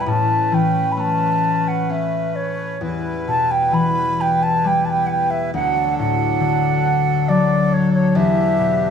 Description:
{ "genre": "celtic folk, Celtic slow air", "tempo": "67 BPM", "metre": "3/4", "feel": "rubato", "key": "E dorian", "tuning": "A4 = 440 Hz", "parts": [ { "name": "bright baroque flute", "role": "melody", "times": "0.0-8.9 s", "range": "C#5 to B5", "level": "-19 LUFS", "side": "right 2 dB", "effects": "none" }, { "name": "concert harp", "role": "accompaniment", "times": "0.0-8.9 s", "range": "D2 to C#4", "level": "-20 LUFS", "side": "left 4 dB", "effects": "none" }, { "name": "accordion", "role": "sustained chords", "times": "0.0-8.9 s", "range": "E3 to B4", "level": "-27 LUFS", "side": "left 1 dB", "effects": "none" } ], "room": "moderate large studio reverb, RT60 1.2 s", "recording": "band playing live in one room", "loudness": "-16 LUFS", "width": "side -7 dB against mid", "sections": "0.0-8.9 A section", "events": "none", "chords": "0.1 Aadd9; 2.8 Em; 5.5 D; 8.2 Em7", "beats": "| 0.07 0.98 1.90 | 2.81 3.73 4.65 | 5.54 6.42 7.29 | 8.16" }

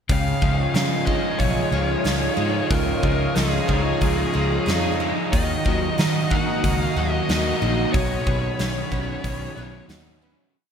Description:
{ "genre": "rock, shoegaze and dream pop", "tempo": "92 BPM", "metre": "4/4", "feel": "straight", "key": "Db mixolydian", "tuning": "A4 = 440 Hz", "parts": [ { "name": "fuzz lead guitar", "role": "melody", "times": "0.1-9.8 s", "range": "Ab4 to Gb5", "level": "-29 LUFS", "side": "left 3 dB", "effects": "distortion, ping-pong delay" }, { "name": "lush unison pad", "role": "sustained chords", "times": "0.1-10.5 s", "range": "F4 to Eb6", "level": "-28 LUFS", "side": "right 1 dB", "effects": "chorus" }, { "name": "picked twelve-string acoustic guitar", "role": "arpeggios", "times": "0.1-10.5 s", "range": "Eb3 to Gb4", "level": "-33 LUFS", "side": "right 4 dB", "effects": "ensemble chorus, ping-pong delay" }, { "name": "crunchy overdriven guitar", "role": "riff", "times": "0.1-10.5 s", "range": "Cb3 to Eb4", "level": "-28 LUFS", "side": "left 9 dB", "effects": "analog chorus" }, { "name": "overdriven semi-hollow guitar", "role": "riff", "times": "0.1-10.5 s", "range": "Cb3 to Gb4", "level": "-28 LUFS", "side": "right 11 dB", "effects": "reverse reverb" }, { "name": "vintage muted fingered electric bass", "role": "bass", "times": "0.1-10.3 s", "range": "Bb1 to Eb3", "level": "-26 LUFS", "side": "equal", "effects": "none" }, { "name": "huge arena drum kit", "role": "drums", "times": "0.1-10.0 s", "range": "hi-hat, kick drum, snare drum", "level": "-26 LUFS", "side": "equal", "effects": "none" } ], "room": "moderate plate reverb, RT60 2.1 s", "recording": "dreamy mix soaked in reverb", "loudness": "-19 LUFS", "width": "side -7 dB against mid", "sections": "0.1-10.5 verse", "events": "fade-out 7.9-10.5", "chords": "0.1 Dbadd9; 5.3 Ebm; 7.9 Cbadd9", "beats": "| 0.10 0.75 1.40 2.05 | 2.71 3.36 4.02 4.67 | 5.33 5.98 6.64 7.29 | 7.94 8.60 9.25 9.90" }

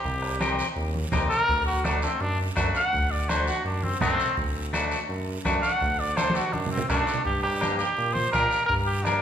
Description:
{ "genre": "latin, cumbia", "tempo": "167 BPM", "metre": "4/4", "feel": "straight", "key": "G harmonic minor", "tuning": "A4 = 444 Hz", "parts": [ { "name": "clear trumpet", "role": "melody", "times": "0.0-9.2 s", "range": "C4 to F#5", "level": "-26 LUFS", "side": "equal", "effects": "none" }, { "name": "smooth synth bass", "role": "bass", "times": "0.0-9.2 s", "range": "C2 to Bb2", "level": "-30 LUFS", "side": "equal", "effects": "none" }, { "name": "bombo", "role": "percussion", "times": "0.0-9.2 s", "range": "none", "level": "-32 LUFS", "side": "right 1 dB", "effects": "none" }, { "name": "guiro", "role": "percussion", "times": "0.0-9.2 s", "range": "none", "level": "-40 LUFS", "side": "right 5 dB", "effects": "none" }, { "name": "clean electric guitar", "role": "accompaniment", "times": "0.4-9.2 s", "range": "A3 to Bb4", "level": "-30 LUFS", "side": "left 3 dB", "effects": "none" }, { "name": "congas", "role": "percussion", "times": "0.4-9.2 s", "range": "none", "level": "-34 LUFS", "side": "right 1 dB", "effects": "none" } ], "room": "wet recital hall reverb, RT60 1.4 s", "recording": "recorded in a church or concert hall", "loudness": "-23 LUFS", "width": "side -9 dB against mid", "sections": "0.0-7.3 A section; 7.3-9.2 B section", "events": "trumpet solo 0.0-7.3; drum fill 6.2-7.3", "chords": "0.0 Cm; 1.5 D7; 7.3 Gm", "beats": "| 0.05 0.41 0.77 1.13 | 1.49 1.85 2.21 2.57 | 2.93 3.29 3.65 4.01 | 4.37 4.73 5.09 5.45 | 5.81 6.17 6.53 6.89 | 7.25 7.61 7.97 8.33 | 8.69 9.05" }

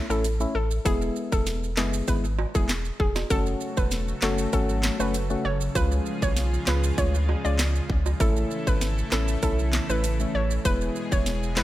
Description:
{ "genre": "dancehall", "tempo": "98 BPM", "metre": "4/4", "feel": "straight", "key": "F# minor", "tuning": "A4 = 441 Hz", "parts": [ { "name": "percussive organ stab", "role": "accompaniment", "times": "0.0-11.6 s", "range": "G#3 to F#4", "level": "-31 LUFS", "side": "left 2 dB", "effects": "chorus" }, { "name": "hollow square pluck", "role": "melody", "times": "0.1-11.6 s", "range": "G#4 to D5", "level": "-31 LUFS", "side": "equal", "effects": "chorus, ping-pong delay" }, { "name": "saturated sub bass", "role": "bass", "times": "0.1-11.6 s", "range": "E1 to D2", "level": "-26 LUFS", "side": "equal", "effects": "none" }, { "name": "maracas and timbales", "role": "percussion", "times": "0.1-11.6 s", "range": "none", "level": "-38 LUFS", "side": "right 8 dB", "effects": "none" }, { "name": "island pop drum kit", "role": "drums", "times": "0.2-11.6 s", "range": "handclaps, hi-hat, kick drum, snare drum", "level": "-26 LUFS", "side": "equal", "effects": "none" }, { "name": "lush unison pad", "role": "sustained chords", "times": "3.3-11.6 s", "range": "B2 to A4", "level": "-33 LUFS", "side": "equal", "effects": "chorus, sidechain pumping" } ], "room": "little or no reverb", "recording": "none", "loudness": "-22 LUFS", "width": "side -15 dB against mid", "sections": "0.0-11.6 A section", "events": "none", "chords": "0.0 A; 0.9 E; 3.3 F#m; 5.8 C#; 8.2 A; 10.7 E", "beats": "0.24 | 0.85 1.47 2.08 2.69 | 3.30 3.92 4.53 5.14 | 5.75 6.37 6.98 7.59 | 8.20 8.81 9.43 10.04 | 10.65 11.26" }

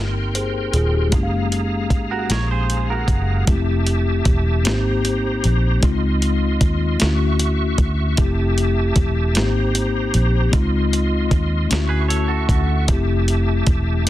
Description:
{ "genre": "slow six-eight R&B", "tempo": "51 BPM (dotted quarters)", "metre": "6/8", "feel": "straight", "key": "unclear", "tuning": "A4 = 440 Hz", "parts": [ { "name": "mellow tine electric piano", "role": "accompaniment", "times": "0.0-14.1 s", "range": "Ab3 to F5", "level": "-23 LUFS", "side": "left 3 dB", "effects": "slow stereo tremolo" }, { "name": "bright tonewheel organ", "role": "sustained chords", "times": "0.0-14.1 s", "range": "F4 to C#6", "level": "-28 LUFS", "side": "right 1 dB", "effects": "chorus vibrato, fast rotary speaker" }, { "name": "vintage muted fingered electric bass", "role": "bass", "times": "0.0-14.1 s", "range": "Eb1 to Eb2", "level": "-19 LUFS", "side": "equal", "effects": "none" }, { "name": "dusty soul sampler-style drum kit", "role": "drums", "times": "0.3-14.1 s", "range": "hi-hat, kick drum, snare drum", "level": "-20 LUFS", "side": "equal", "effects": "none" }, { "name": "clean electric guitar", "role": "second line", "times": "2.1-3.5, 11.9-12.8 s", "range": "Gb4 to Db5", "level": "-26 LUFS", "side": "right 6 dB", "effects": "lush chorus" } ], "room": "digital ambience", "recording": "dense, heavily limited modern master", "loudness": "-16 LUFS", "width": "side -14 dB against mid", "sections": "0.0-3.5 A section; 3.5-14.1 B section", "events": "none", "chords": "0.0 Abmaj9; 1.1 Gbmaj9; 3.5 Fmaj9; 4.7 Abmaj9; 5.8 Dbmaj9; 7.0 Dmaj9; 8.2 Fmaj9; 9.4 Abmaj9; 10.5 Dbmaj9; 11.7 Dmaj9; 12.9 Fmaj9", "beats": "| 1.12 2.30 | 3.47 4.65 | 5.83 7.00 | 8.18 9.36 | 10.53 11.71 | 12.89 14.06" }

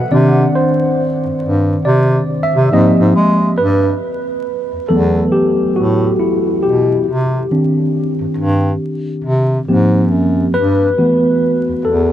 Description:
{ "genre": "R&B, neo-soul", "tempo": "69 BPM", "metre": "4/4", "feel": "swing 62% on 16ths", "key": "unclear", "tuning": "A4 = 440 Hz", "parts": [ { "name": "tine electric piano", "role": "accompaniment", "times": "0.0-12.1 s", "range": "Eb3 to F#5", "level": "-14 LUFS", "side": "equal", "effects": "wide subtle chorus" }, { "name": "breathy bass clarinet", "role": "bass", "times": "0.1-12.1 s", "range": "E2 to Ab3", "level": "-14 LUFS", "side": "equal", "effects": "none" } ], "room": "wet huge ambient reverb, RT60 4.2 s", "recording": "dreamy mix soaked in reverb, vinyl crackle", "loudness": "-12 LUFS", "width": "side -11 dB against mid", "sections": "0.0-3.6 A section; 3.6-12.1 B section", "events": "tine electric piano solo 0.0-3.6, 3.6-12.1", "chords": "0.1 Cmadd9; 2.7 Abmaj13; 3.6 Gmaj13; 7.1 Cmadd9; 9.7 Abmaj13; 10.5 Gmaj13", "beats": "| 0.10 0.97 1.84 2.71 | 3.58 4.45 5.32 6.18 | 7.05 7.92 8.79 9.66 | 10.53 11.40" }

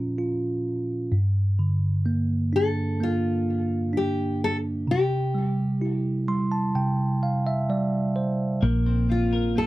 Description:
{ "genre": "pop", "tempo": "64 BPM", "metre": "4/4", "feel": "straight", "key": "unclear", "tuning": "A4 = 440 Hz", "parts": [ { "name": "bell-like tine electric piano", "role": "accompaniment", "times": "0.0-9.7 s", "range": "G2 to C6", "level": "-23 LUFS", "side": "right 1 dB", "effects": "none" }, { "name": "nylon-string guitar", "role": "melody", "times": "2.6-9.7 s", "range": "F4 to A4", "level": "-27 LUFS", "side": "left 3 dB", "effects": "none" }, { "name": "twelve-string electric guitar", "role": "arpeggios", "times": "8.6-9.7 s", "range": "Bb3 to Bb4", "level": "-32 LUFS", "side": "left 2 dB", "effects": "none" }, { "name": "vintage muted fingered electric bass", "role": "bass", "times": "8.6-9.7 s", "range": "Bb1", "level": "-23 LUFS", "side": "left 1 dB", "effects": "none" } ], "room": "light reverb", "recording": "dry, close 1970s-style studio recording", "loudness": "-22 LUFS", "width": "side -17 dB against mid", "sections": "0.0-8.6 A section; 8.6-9.7 B section", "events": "tine electric piano fill 5.8-8.6", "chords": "0.0 Bbm; 1.1 Gm; 4.9 C; 8.6 Bbsus2", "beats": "0.18 | 1.12 2.06 2.99 3.93 | 4.87 5.81 6.74 7.68 | 8.62 9.56" }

